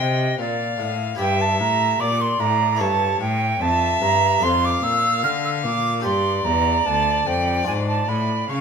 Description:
classical, baroque-style sonata movement with continuo; 74 BPM; 4/4; rubato; D minor; A4 = 440 Hz
warm violin; melody; 0.0-8.6 s; C#5 to G5; -26 LUFS; left 8 dB
bright silver concert flute; second line; 0.0-8.6 s; D5 to F6; -21 LUFS; right 6 dB
harpsichord; accompaniment; 0.0-8.6 s; D2 to D5; -28 LUFS; left 3 dB
clear cello; bass; 0.0-8.6 s; D2 to D3; -24 LUFS; left 1 dB
moderate large studio reverb, RT60 1.4 s; minimal, uncompressed stereo recording; -18 LUFS; side -6 dB against mid
0.0-8.6 A section
0.0 Gm; 1.2 Em7b5/G; 2.8 A7/G; 4.4 Dm/F; 6.0 G5; 7.7 G#dim7

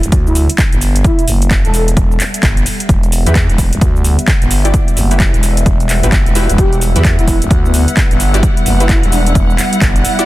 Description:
bass house; 130 BPM; 4/4; swing 62% on 16ths; E minor; A4 = 439 Hz
growling FM bass; bass; 0.0-10.0 s; E1 to E2; -13 LUFS; equal; overdrive, sidechain pumping
house drum kit; drums; 0.0-10.3 s; cabasa, handclaps, hi-hat; -19 LUFS; equal; overdrive
warbly tape-like pad; texture; 0.5-10.3 s; G3 to F#5; -22 LUFS; equal; chorus, built-in reverb, sidechain pumping
electronic kick drum; drums; 0.1-9.9 s; -13 LUFS; equal; overdrive
breathy flute-like synth lead; melody; 0.3-1.8, 6.6-9.3 s; B3 to A4; -21 LUFS; left 1 dB; analog chorus, cassette tape, digital delay
orchestra-hit-like synth stab; stabs; 3.3-10.3 s; E4 to D5; -22 LUFS; equal; built-in reverb, sidechain pumping, digital delay
dark studio string section; sustained chords; 6.6-10.3 s; G3 to F#5; -22 LUFS; left 1 dB; sidechain pumping
digital ambience; dense, heavily limited modern master; -9 LUFS; side -17 dB against mid
0.0-10.3 A section
0.0 Emadd9

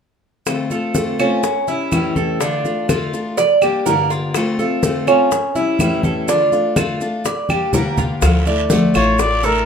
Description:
latin, Cuban son and guajira; 124 BPM; 4/4; straight; D harmonic minor; A4 = 440 Hz
picked steel-string acoustic guitar; accompaniment; 0.5-9.7 s; G2 to G4; -20 LUFS; left 2 dB
bongos; percussion; 0.5-9.4 s; -25 LUFS; left 7 dB
claves; percussion; 0.5-9.2 s; -27 LUFS; right 3 dB
congas; percussion; 0.5-9.7 s; -22 LUFS; equal
maracas; percussion; 0.5-9.7 s; -30 LUFS; right 8 dB
Cuban tres; arpeggios; 0.7-9.7 s; C#4 to D5; -18 LUFS; right 3 dB
upright bass; bass; 8.2-9.6 s; A1 to D2; -19 LUFS; equal
guiro; percussion; 8.2-9.7 s; -29 LUFS; right 6 dB
breathy trumpet; melody; 9.0-9.7 s; Bb4 to D5; -16 LUFS; left 2 dB
moderate large studio reverb, RT60 0.9 s; minimal, uncompressed stereo recording; -15 LUFS; side -7 dB against mid
0.5-8.2 A section; 8.2-9.7 B section
drum fill 7.5-8.2
0.5 Dm7; 1.4 A7; 2.4 Dm; 3.4 Gm; 4.3 Dm7; 5.3 A7; 6.3 Dm; 7.3 Gm; 8.2 Dmadd9

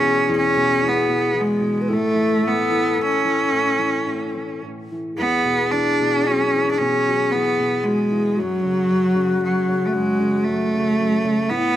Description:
celtic folk, Celtic slow air; 57 BPM; 3/4; rubato; A4 = 440 Hz
bright cello; melody; 0.0-11.8 s; F#3 to D4; -19 LUFS; right 2 dB
mellow hollow baroque flute; second line; 0.0-11.8 s; E4 to B4; -23 LUFS; left 4 dB
dark upright piano; accompaniment; 0.0-11.8 s; E2 to F#3; -26 LUFS; right 1 dB
moderate plate reverb, RT60 3.3 s; rough home demo mix; -17 LUFS; side -12 dB against mid
0.0-11.8 A section
0.0 E; 1.9 A; 5.2 Esus2; 8.4 F#m

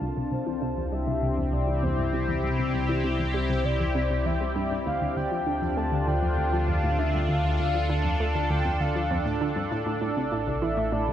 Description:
ambient; 99 BPM; 4/4; straight; D minor; A4 = 441 Hz
sweeping resonant pad; sustained chords; 0.0-11.1 s; C4 to A5; -29 LUFS; left 1 dB; chorus, shimmer reverb
analog pluck; riff; 0.0-11.1 s; C2 to A3; -30 LUFS; equal; chorus, tape echo
analog drone; bass; 0.6-11.1 s; A1 to D2; -29 LUFS; equal; chorus
pulsing gated texture; texture; 0.0-11.1 s; D5; -42 LUFS; right 7 dB
mellow horn-like synth lead; melody; 0.3-11.1 s; C5 to A5; -32 LUFS; left 1 dB; chorus, cassette tape, shimmer reverb, tape echo
moderate huge ambient reverb, RT60 8.7 s; cassette tape; -24 LUFS; side -10 dB against mid
0.0-11.1 A section
filter sweep on synth arpeggio sound 0.0-11.1
0.0 C; 4.9 Dm; 9.7 Asus4

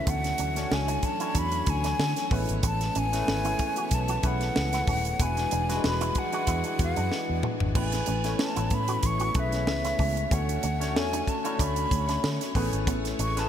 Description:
polished 1980s jazz-funk pop; 94 BPM; 4/4; swing 54% on 16ths; A4 = 442 Hz
breathy mellow silver concert flute; melody; 0.0-13.5 s; E5 to C#6; -31 LUFS; left 1 dB
barky tine electric piano; accompaniment; 0.0-13.5 s; G3 to C#5; -32 LUFS; left 2 dB; overdrive, lush chorus
string machine, full ensemble; sustained chords; 0.0-13.5 s; D3 to C#5; -37 LUFS; equal; ensemble chorus
electric guitar with an envelope filter; riff; 0.1-13.4 s; B3 to F#4; -38 LUFS; right 6 dB; lush chorus
vintage muted fingered electric bass; bass; 0.1-13.5 s; D#1 to D3; -29 LUFS; equal
tight funk drum kit; drums; 0.1-13.5 s; crash cymbal, hi-hat, kick drum, snare drum, toms; -30 LUFS; equal
moderate lush hall reverb, RT60 2.4 s; bright 1980s-style digital production; -24 LUFS; side -9 dB against mid
0.0-13.5 A section
drum fill 7.1-7.8
0.1 Dmaj7; 2.3 Amaj9; 5.2 E9; 7.8 Amaj9; 10.3 Dmaj7; 12.6 Amaj9

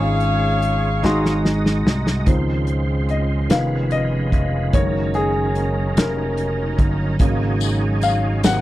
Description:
slow gospel; 49 BPM (dotted quarters); 6/8; straight; Db major; A4 = 439 Hz
clear saxophone section; melody; 0.0-1.4 s; Ab4 to F5; -22 LUFS; left 2 dB
warm concert grand piano; accompaniment; 0.0-8.6 s; Ab2 to C6; -23 LUFS; left 2 dB
overdriven tonewheel organ; sustained chords; 0.0-8.6 s; Db3 to Eb5; -28 LUFS; right 4 dB; slow rotary speaker, chorus vibrato
vintage slap bass; bass; 0.0-8.6 s; F1 to Db2; -21 LUFS; equal
warm soul drum kit; drums; 0.2-8.6 s; hi-hat, kick drum, snare drum; -19 LUFS; equal
warm studio string section; sustained chords; 2.3-8.6 s; Db3 to Eb4; -30 LUFS; right 2 dB
tambourine; percussion; 7.6-8.6 s; -30 LUFS; left 21 dB
little or no reverb; dry, close 1970s-style studio recording; -17 LUFS; side -15 dB against mid
0.0-2.3 A section; 2.3-8.6 B section
drum fill 1.0-2.3; grand piano solo 2.3-8.6
0.0 Db/Ab; 1.0 Ab7; 2.3 Dbmaj7; 3.5 Db7/F; 4.7 Gb6; 7.2 Ab7sus4

